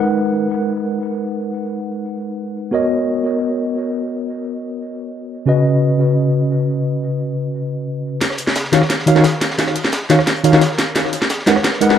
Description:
liquid drum and bass; 175 BPM; 4/4; straight; G# minor; A4 = 440 Hz
mellow tine electric piano; accompaniment; 0.0-12.0 s; C#3 to F#5; -16 LUFS; equal; medium stereo tremolo, low-pass filter, tape echo
crunchy breakbeat drum kit; drums; 8.2-11.9 s; hi-hat, snare drum; -25 LUFS; equal; high-pass filter on hats, high-pass filter on snare, high-pass filter on room, tape echo
drum and bass drum kit; drums; 8.2-12.0 s; hi-hat, rim click, snare drum; -18 LUFS; equal
moderate spring reverb, RT60 2.1 s; echo-heavy mix; -15 LUFS; side -9 dB against mid
0.0-8.2 A section; 8.2-12.0 B section
build-up 8.2-12.0; drum fill 8.2-12.0; filter sweep on tine electric piano 8.2-12.0
0.0 G#m9; 2.7 Bmaj9; 5.5 C#9sus4; 8.2 D#m9; 11.0 G#m9

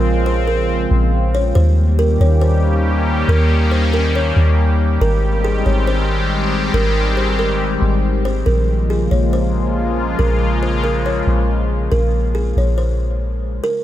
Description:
hip hop, atmospheric cloud-rap; 139 BPM; 4/4; half-time; Bb dorian; A4 = 439 Hz
buzzing kalimba; melody; 0.0-13.8 s; Ab4 to Db5; -23 LUFS; equal; tape echo
sweeping resonant pad; sustained chords; 0.0-13.6 s; Db3 to G4; -19 LUFS; left 1 dB; chorus
soft 808-style bass; bass; 0.0-13.6 s; Ab1 to Eb2; -16 LUFS; equal
light reverb, studio reverb; -14 LUFS; side -12 dB against mid
0.0-8.5 A section; 8.5-13.8 B section
0.0 Bbm7; 1.6 Eb7; 5.0 Abmaj7; 8.5 Bbm7

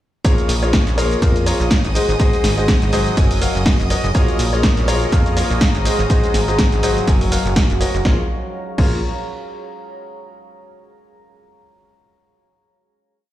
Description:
piano house; 123 BPM; 4/4; swing 56% on 16ths; Bb minor; A4 = 440 Hz
string machine, violins; sustained chords; 0.2-8.1 s; Eb5 to Eb6; -30 LUFS; equal; ensemble chorus, sidechain pumping
clear upright piano; riff; 0.2-9.0 s; Gb3 to Ab5; -21 LUFS; left 2 dB; sidechain pumping, ping-pong delay
dusty soul sampler-style drum kit; drums; 0.2-7.9 s; ride cymbal, snare drum; -36 LUFS; right 2 dB
electronic kick drum; drums; 0.2-8.9 s; -17 LUFS; equal
punchy analog drum machine; drums; 0.2-8.9 s; crash cymbal, hi-hat, shaker, snare drum; -23 LUFS; equal
deep dark ambient pad; texture; 1.0-10.0 s; F4 to Bb5; -28 LUFS; right 2 dB; chorus, built-in reverb, sidechain pumping
plucky analog bass; bass; 0.5-9.0 s; Gb1 to F2; -20 LUFS; equal; sidechain pumping
light reverb; played on a big sound system in a bare room, stone room reverb; -14 LUFS; side -13 dB against mid
0.2-8.1 drop; 8.1-10.0 final chord
drop 0.2-8.1
0.2 Bbm7; 2.0 Ab7; 3.2 Gbmaj7; 4.1 Bbm7; 5.9 Ab7; 7.1 Gbmaj7; 8.1 Bbm7

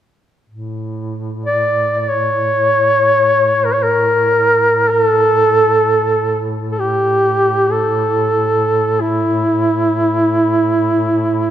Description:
caucasian folk, Caucasian lament; free time; A4 = 439 Hz
dark duduk; drone; 0.5-11.5 s; A2; -22 LUFS; equal
warm duduk; melody; 1.5-11.5 s; E4 to D5; -12 LUFS; equal
wet church reverb, RT60 2.6 s; minimal, uncompressed stereo recording; -12 LUFS; side -10 dB against mid
0.5-11.5 A section

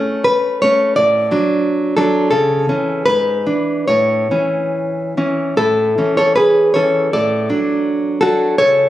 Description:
romantic piece for solo classical guitar; 70-90 BPM; 2/4; rubato; A major; A4 = 440 Hz
nylon-string guitar; solo; 0.0-8.9 s; G#2 to D5; -13 LUFS; equal
moderate recital hall reverb, RT60 1.7 s; recorded on a phone in the room, studio ambience; -13 LUFS; side -13 dB against mid
0.0-5.6 A section; 5.6-8.9 A section
0.0 A; 1.0 D/A; 2.3 A/C#; 3.1 E7/G#; 3.9 A; 7.1 D/A

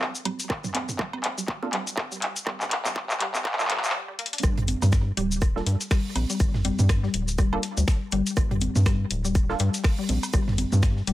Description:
minimal techno; 122 BPM; 4/4; swing 58% on 16ths; G minor; A4 = 441 Hz
booming analog drum machine; drums; 0.0-11.1 s; finger snaps, handclaps, hi-hat, shaker; -28 LUFS; left 1 dB
organic electronic drum kit; percussion; 0.0-10.9 s; congas, cowbell, rim click, toms; -30 LUFS; right 2 dB; tape echo
resonant blip pluck; riff; 0.3-11.1 s; G3 to D4; -32 LUFS; left 3 dB; chorus, sidechain pumping, tape echo
electronic kick drum; drums; 0.5-10.9 s; -24 LUFS; equal
filtered dub chord stab; stabs; 1.6-9.6 s; Bb3 to A4; -34 LUFS; right 4 dB; lush chorus, tape echo
rubbery square bass; bass; 4.4-11.1 s; D1 to G2; -25 LUFS; equal; sidechain pumping
deep reggae drum kit; drums; 4.4-11.1 s; hi-hat, shaker, snare drum; -41 LUFS; right 1 dB; high-pass filter on hats, high-pass filter on snare, high-pass filter on perc, high-pass filter on room
light reverb; high-pass filter; -23 LUFS; side -15 dB against mid
0.0-4.4 A section; 4.4-11.1 B section
build-up 0.0-4.4; drum fill 0.0-3.9, 4.2; filter sweep on synth arpeggio sound 0.0-4.4; break 3.9-4.4; drop 4.4-11.1
0.0 Gm7; 4.4 G5

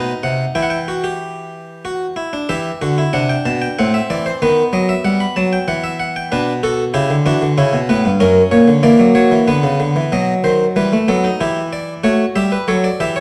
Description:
classical, baroque-style 3-part fugue for harpsichord; 94 BPM; 3/4; straight; E minor; A4 = 439 Hz
harpsichord; solo; 0.0-13.2 s; F#2 to B5; -16 LUFS; equal
wet recital hall reverb, RT60 1.5 s; dark, warm production; -16 LUFS; mono
0.0-2.5 A section; 2.5-10.1 B section; 10.1-13.2 A section
0.0 B; 0.6 Em; 3.8 F#m7b5/A; 4.4 B7/D#; 5.7 Em; 6.3 Bm; 7.6 C#m7b5; 8.2 F#7; 9.5 Bm; 10.1 B7; 11.4 Em; 12.0 A7

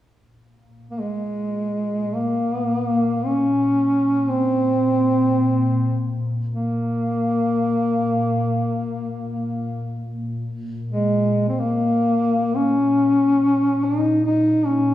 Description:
caucasian folk, Caucasian lament; free time; Bb minor; A4 = 440 Hz
glassy FM pad; drone; 1.5-14.9 s; Bb2; -27 LUFS; left 1 dB; ensemble chorus, built-in reverb
dark duduk; melody; 0.9-14.9 s; Ab3 to Eb4; -19 LUFS; equal
wet scoring stage reverb, RT60 1.6 s; small room ambience; -18 LUFS; side -13 dB against mid
0.1-12.6 A section; 12.6-14.9 B section

